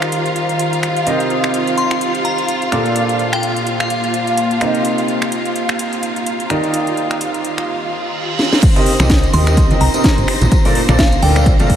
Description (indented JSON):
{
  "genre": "piano house",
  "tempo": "127 BPM",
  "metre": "4/4",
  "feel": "swing 57% on 16ths",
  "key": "C dorian",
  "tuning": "A4 = 440 Hz",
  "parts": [
    { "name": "rich studio violin section", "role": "sustained chords", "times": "0.0-11.8 s", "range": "F4 to Bb6", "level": "-21 LUFS", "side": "equal", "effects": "sidechain pumping" },
    { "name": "bright grand piano", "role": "riff", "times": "0.0-11.8 s", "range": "Bb2 to F5", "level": "-20 LUFS", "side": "right 2 dB", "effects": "lush chorus, sidechain pumping, tape echo" },
    { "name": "house drum kit", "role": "drums", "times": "0.0-11.8 s", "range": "crash cymbal, finger snaps, hi-hat, snare drum", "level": "-22 LUFS", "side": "equal", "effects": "overdrive" },
    { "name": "ethereal airy pad", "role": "texture", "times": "0.0-7.7, 10.8-11.8 s", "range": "Eb3 to Bb5", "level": "-24 LUFS", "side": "left 1 dB", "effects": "ensemble chorus, built-in reverb, sidechain pumping" },
    { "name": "glassy synth bell", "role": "melody", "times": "1.8-4.5, 9.3-11.4 s", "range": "F5 to C6", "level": "-24 LUFS", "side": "left 1 dB", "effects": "chorus, phaser, tape echo" },
    { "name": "reverse cymbal", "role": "sound effects", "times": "7.9-8.6 s", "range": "none", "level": "-26 LUFS", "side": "right 5 dB", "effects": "none" },
    { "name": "electronic kick drum", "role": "drums", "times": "8.6-11.8 s", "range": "none", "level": "-14 LUFS", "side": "equal", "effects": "overdrive" },
    { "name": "tambourine and congas", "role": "percussion", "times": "8.6-11.7 s", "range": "none", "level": "-24 LUFS", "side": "right 1 dB", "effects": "none" },
    { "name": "solid FM bass", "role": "bass", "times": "9.0-11.8 s", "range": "G1 to Eb2", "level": "-14 LUFS", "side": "equal", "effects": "sidechain pumping" }
  ],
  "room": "wet huge ambient reverb, RT60 7.5 s",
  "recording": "dreamy mix soaked in reverb",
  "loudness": "-13 LUFS",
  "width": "side -9 dB against mid",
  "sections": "0.0-8.6 A section; 8.6-11.8 B section",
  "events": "reverse cymbal 7.9-8.6; drum fill 8.4; drop 8.6-11.8",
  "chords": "0.0 Ebmaj7; 1.1 Cm7; 2.7 Bbmaj7; 4.6 Cm7; 6.5 Ebmaj7; 8.6 Cm7; 10.3 Bbmaj7",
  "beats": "0.12 0.59 | 1.07 1.54 2.01 2.48 | 2.96 3.43 3.90 4.38 | 4.85 5.32 5.79 6.26 | 6.74 7.21 7.68 8.15 | 8.63 9.10 9.57 10.04 | 10.52 10.99 11.46"
}